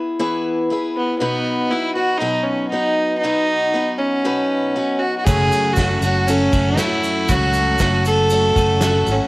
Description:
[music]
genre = folk rock and heartland rock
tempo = 118 BPM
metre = 4/4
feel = straight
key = unclear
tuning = A4 = 441 Hz
[part]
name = picked steel-string acoustic guitar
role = accompaniment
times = 0.0-9.3 s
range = B2 to B4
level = -22 LUFS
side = left 2 dB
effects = cassette tape
[part]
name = rich fiddle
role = melody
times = 1.0-9.3 s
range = B3 to A4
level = -18 LUFS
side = right 1 dB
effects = cassette tape
[part]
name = twelve-string electric guitar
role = riff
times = 5.3-9.3 s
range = F#2 to F#4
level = -24 LUFS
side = equal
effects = spring reverb, cassette tape
[part]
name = fingered electric bass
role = bass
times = 5.3-9.2 s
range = F#1 to C#2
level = -20 LUFS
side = equal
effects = none
[part]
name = soft brush drum kit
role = drums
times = 5.3-9.2 s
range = crash cymbal, kick drum, ride cymbal, snare drum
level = -23 LUFS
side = equal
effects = cassette tape
[part]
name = egg shaker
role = percussion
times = 5.3-9.2 s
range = none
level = -34 LUFS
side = right 3 dB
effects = none
[sound]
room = light reverb, small room ambience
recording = home recording on cassette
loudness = -16 LUFS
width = side -22 dB against mid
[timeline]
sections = 0.0-9.3 A section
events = none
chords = 0.0 E; 1.2 B; 5.3 F#m

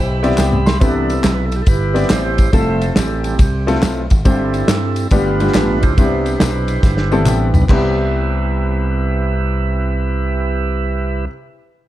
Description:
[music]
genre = uptempo gospel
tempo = 140 BPM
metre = 4/4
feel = swing 65% on 8ths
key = C major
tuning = A4 = 443 Hz
[part]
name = tonewheel organ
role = sustained chords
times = 0.0-11.3 s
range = C3 to B5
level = -21 LUFS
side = right 4 dB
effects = slow rotary speaker
[part]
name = slap bass with an envelope filter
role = bass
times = 0.0-11.3 s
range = F1 to G2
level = -19 LUFS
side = equal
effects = none
[part]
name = warm baby grand piano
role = accompaniment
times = 0.2-11.3 s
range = C2 to C6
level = -20 LUFS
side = left 3 dB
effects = none
[part]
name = warm soul drum kit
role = drums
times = 0.2-7.8 s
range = crash cymbal, kick drum, ride cymbal, snare drum, toms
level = -15 LUFS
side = equal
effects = none
[part]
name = tambourine and handclaps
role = percussion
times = 0.2-8.0 s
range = none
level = -31 LUFS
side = left 3 dB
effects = none
[sound]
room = light reverb, studio reverb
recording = dark, warm production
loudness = -13 LUFS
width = side -14 dB against mid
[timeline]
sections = 0.8-7.7 A section; 7.7-11.1 B section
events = grand piano fill 0.0-0.8, 7.0-7.7; drum fill 0.4-0.8, 6.8-7.7; tonewheel organ solo 0.8-7.7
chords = 0.0 Cmaj7; 2.5 Fmaj7; 4.3 C/G; 5.1 G7; 6.0 Cmaj7

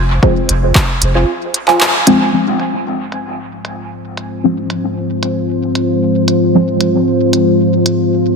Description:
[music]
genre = dub techno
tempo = 114 BPM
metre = 4/4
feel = straight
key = F minor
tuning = A4 = 441 Hz
[part]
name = soft dub sub bass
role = bass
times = 0.0-1.2 s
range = F1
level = -13 LUFS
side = equal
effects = sidechain pumping
[part]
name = deep mellow chord stab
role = stabs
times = 0.2-6.6 s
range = F3 to C4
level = -16 LUFS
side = equal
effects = chorus, phaser, sidechain pumping, dub echo
[part]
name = electronic kick drum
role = drums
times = 0.2-0.9 s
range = none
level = -14 LUFS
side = equal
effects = none
[part]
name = deep house drum kit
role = drums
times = 0.5-8.0 s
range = handclaps, hi-hat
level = -17 LUFS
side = equal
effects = low-pass filter on hats, low-pass filter on snare, low-pass filter on room, dub echo
[part]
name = filtered dub chord stab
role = riff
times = 1.2-2.2 s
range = F4 to Ab5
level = -18 LUFS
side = right 3 dB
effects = phaser, lush chorus, sidechain pumping, dub echo
[part]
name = deep dark ambient pad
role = sustained chords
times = 3.8-8.4 s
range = Ab3 to C5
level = -13 LUFS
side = left 1 dB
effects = chorus, built-in reverb, sidechain pumping
[sound]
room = wet echo chamber reverb, RT60 2.1 s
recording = heavily compressed radio sound, faint mains hum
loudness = -11 LUFS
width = side -4 dB against mid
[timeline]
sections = 0.0-2.3 A section; 2.3-8.4 B section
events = band accent 1.8; filter sweep on drum 2.3-8.4; filter sweep on synth stab 2.3-8.4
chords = 0.0 Fm

